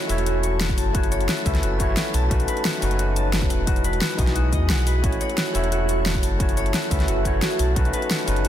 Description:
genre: liquid drum and bass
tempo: 176 BPM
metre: 4/4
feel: straight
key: A lydian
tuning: A4 = 440 Hz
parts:
  - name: overdriven tine electric piano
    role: accompaniment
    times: 0.0-8.5 s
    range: G#3 to C#5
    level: -28 LUFS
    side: equal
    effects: ping-pong delay
  - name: glassy FM pad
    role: sustained chords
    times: 0.0-8.5 s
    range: D#4 to A5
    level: -30 LUFS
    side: right 2 dB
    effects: ensemble chorus, built-in reverb, phaser
  - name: concert harp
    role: arpeggios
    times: 0.0-8.5 s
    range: F#4 to C#6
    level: -29 LUFS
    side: left 4 dB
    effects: dub echo
  - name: pop drum kit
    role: drums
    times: 0.0-8.5 s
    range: hi-hat, shaker, snare drum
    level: -27 LUFS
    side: equal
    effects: none
  - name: sub bass with octave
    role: bass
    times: 0.1-8.5 s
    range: E1 to E2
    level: -23 LUFS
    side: equal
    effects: none
  - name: electronic kick drum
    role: drums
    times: 0.7-7.8 s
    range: none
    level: -24 LUFS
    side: equal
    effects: none
room: light reverb, digital ambience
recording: dense, heavily limited modern master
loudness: -19 LUFS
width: side -11 dB against mid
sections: 0.0-8.5 A section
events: none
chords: 0.0 A6; 0.9 F#m7; 2.3 B9; 3.7 Emaj9; 5.0 A6; 6.4 F#m7; 7.8 B9

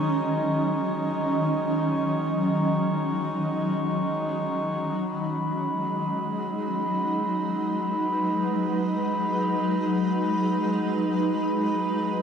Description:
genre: ambient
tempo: free time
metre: none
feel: none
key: G# minor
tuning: A4 = 440 Hz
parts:
  - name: granular cloud pad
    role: sustained chords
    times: 0.0-12.2 s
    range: D#3 to D#5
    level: -25 LUFS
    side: equal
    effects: built-in reverb
  - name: pedal harmonium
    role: drone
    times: 0.0-12.2 s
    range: G#3 to D#4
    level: -34 LUFS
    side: equal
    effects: none
  - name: glass harmonica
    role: texture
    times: 0.0-12.2 s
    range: B5 to C#6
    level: -30 LUFS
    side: equal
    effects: none
room: wet cathedral reverb, RT60 7.0 s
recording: none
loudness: -23 LUFS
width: side -7 dB against mid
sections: 0.0-5.0 A section; 5.0-12.2 B section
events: none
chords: 0.0 D#m7; 5.0 G#m7

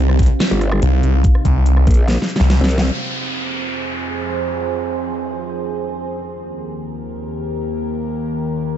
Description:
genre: heavy wobble dubstep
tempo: 143 BPM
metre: 4/4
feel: half-time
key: F minor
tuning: A4 = 442 Hz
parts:
  - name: evolving wavetable pad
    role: sustained chords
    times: 0.0-8.8 s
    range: Eb2 to F5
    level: -23 LUFS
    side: right 3 dB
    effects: chorus, built-in reverb, sidechain pumping
  - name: snarling distorted saw bass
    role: bass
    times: 0.0-2.6 s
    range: C2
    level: -13 LUFS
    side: equal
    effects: distortion, overdrive
  - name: dubstep drum kit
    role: drums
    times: 0.1-2.9 s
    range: handclaps, hi-hat, rim click, snare drum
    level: -21 LUFS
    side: equal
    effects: studio ambience
  - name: electronic kick drum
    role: drums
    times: 0.2-2.0 s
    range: none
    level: -13 LUFS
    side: equal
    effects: overdrive, studio ambience
  - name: growl bass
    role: bass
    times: 0.5-2.9 s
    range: G1 to C2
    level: -16 LUFS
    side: equal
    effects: chorus, overdrive
  - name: downlifter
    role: sound effects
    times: 2.9-6.3 s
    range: none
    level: -28 LUFS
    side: equal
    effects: none
room: light reverb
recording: dark, warm production, nothing above 7.9 kHz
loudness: -16 LUFS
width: side -10 dB against mid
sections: 0.0-2.9 A section; 2.9-8.8 B section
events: drop 0.0-2.9; break 2.1-2.9; drum fill 2.1-2.9; band accent 2.8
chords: 0.0 Cm; 2.9 Fm; 6.3 Eb

